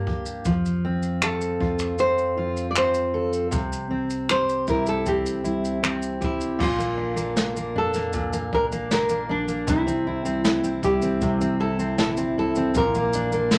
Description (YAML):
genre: acoustic pop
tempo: 78 BPM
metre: 4/4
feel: straight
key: unclear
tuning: A4 = 441 Hz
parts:
  - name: nylon-string guitar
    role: melody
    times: 0.0-13.6 s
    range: D4 to D5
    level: -28 LUFS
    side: equal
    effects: none
  - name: fingerpicked steel-string acoustic guitar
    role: accompaniment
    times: 0.0-13.6 s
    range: G2 to A4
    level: -28 LUFS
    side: equal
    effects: none
  - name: mellow tine electric piano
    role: bass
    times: 0.0-13.6 s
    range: Bb1 to F2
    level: -34 LUFS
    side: equal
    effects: none
  - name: jazz brush drum kit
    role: drums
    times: 0.1-13.6 s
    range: crash cymbal, finger snaps, kick drum, shaker, snare drum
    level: -30 LUFS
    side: equal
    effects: none
room: moderate club reverb, RT60 0.7 s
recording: none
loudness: -24 LUFS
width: mono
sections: 0.0-6.6 A section; 6.6-13.6 B section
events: none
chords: 0.5 F; 3.5 C; 6.6 Bb; 9.7 C; 12.7 Bb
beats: | 0.46 1.23 2.00 2.77 | 3.53 4.30 5.07 5.84 | 6.61 7.38 8.14 8.91 | 9.68 10.45 11.21 11.98 | 12.75 13.52